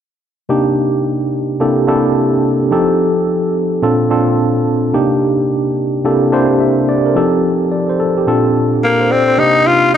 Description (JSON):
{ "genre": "R&B", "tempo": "108 BPM", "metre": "4/4", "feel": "swing 64% on 16ths", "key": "unclear", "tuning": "A4 = 440 Hz", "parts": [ { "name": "tine electric piano", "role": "accompaniment", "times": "0.5-10.0 s", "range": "Bb2 to E5", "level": "-12 LUFS", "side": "equal", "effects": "medium stereo tremolo" }, { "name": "growling tenor saxophone", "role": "melody", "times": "8.8-10.0 s", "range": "Bb3 to F4", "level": "-10 LUFS", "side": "left 2 dB", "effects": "none" } ], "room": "moderate lush hall reverb, RT60 2.5 s", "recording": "dark, warm production", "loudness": "-12 LUFS", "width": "side -9 dB against mid", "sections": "0.5-9.4 A section", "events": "none", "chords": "0.5 Cm9; 1.6 C13; 2.7 F9; 3.8 Bbmaj9; 4.9 Cm9; 6.0 C13; 7.2 F9; 8.3 Bbmaj9; 9.4 Cm9" }